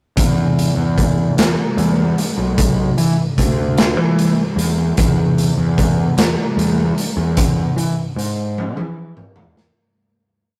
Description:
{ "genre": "psychedelic rock", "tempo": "50 BPM (dotted quarters)", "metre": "6/8", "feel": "straight", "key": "unclear", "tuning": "A4 = 442 Hz", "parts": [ { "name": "fuzz picked electric bass", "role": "bass", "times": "0.2-9.7 s", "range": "B1 to E3", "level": "-20 LUFS", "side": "equal", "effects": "overdrive" }, { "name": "raw garage drum kit", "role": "drums", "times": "0.2-9.7 s", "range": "hi-hat, kick drum, snare drum, toms", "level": "-19 LUFS", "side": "equal", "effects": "none" } ], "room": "light reverb", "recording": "rough rehearsal-room recording, warm saturation", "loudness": "-17 LUFS", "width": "mono", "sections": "0.2-9.8 groove", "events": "fade-out 7.4-9.8; drum fill 8.6-9.8", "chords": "none" }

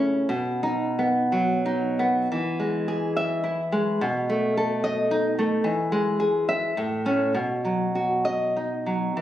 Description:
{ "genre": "romantic piece for solo classical guitar", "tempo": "86-113 BPM", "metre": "3/4", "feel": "rubato", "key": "E major", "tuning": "A4 = 440 Hz", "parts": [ { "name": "nylon-string guitar", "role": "solo", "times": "0.0-9.2 s", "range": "A2 to E5", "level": "-22 LUFS", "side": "equal", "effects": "none" } ], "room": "moderate recital hall reverb, RT60 1.5 s", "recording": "recorded on a phone in the room, club reverb", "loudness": "-22 LUFS", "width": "side -12 dB against mid", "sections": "0.0-2.3 A section; 2.3-9.2 B section", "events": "none", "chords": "0.3 B; 2.3 E; 4.0 B7; 5.6 E; 6.8 A; 7.3 B" }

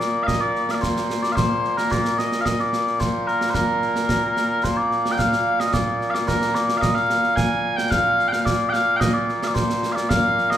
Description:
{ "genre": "scottish traditional, Scottish pipe music", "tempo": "110 BPM", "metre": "4/4", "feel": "straight", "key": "Bb major", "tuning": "A4 = 440 Hz", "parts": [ { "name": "mellow small bagpipes", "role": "melody", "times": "0.0-10.6 s", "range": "Bb2 to Ab5", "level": "-20 LUFS", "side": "equal", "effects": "none" }, { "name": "concert snare drum and concert bass drum", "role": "drums", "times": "0.0-10.6 s", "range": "none", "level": "-24 LUFS", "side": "right 1 dB", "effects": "none" } ], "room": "wet recital hall reverb, RT60 1.4 s", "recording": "recorded in a church or concert hall", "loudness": "-18 LUFS", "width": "side -10 dB against mid", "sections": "0.0-10.6 A section", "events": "none", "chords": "none" }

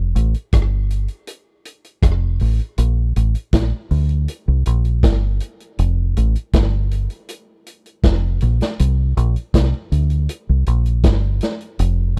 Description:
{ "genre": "lovers rock reggae", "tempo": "80 BPM", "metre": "4/4", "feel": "straight", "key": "unclear", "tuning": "A4 = 440 Hz", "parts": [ { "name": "deep dub fingered electric bass", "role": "bass", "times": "0.0-12.2 s", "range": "F1 to D2", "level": "-19 LUFS", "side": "equal", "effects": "none" }, { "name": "vintage drum kit", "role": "drums", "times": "0.2-12.2 s", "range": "hi-hat, kick drum, rim click, snare drum", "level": "-20 LUFS", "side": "equal", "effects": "slapback echo" } ], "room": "little or no reverb", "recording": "dry, close 1970s-style studio recording", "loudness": "-18 LUFS", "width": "mono", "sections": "0.0-12.2 A section", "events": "none", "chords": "none" }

